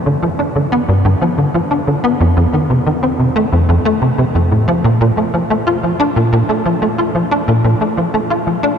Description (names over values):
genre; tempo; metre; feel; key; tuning
ambient; 91 BPM; 4/4; straight; F lydian, Bb major from 4.8 s; A4 = 440 Hz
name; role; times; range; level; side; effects
tight sequencer bass; solo; 0.0-8.7 s; F2 to F4; -12 LUFS; equal; ensemble chorus, ping-pong delay
room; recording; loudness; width
wet huge ambient reverb, RT60 9.0 s; dark, warm production; -12 LUFS; side -7 dB against mid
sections
0.0-4.8 A section; 4.8-8.8 B section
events
none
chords
none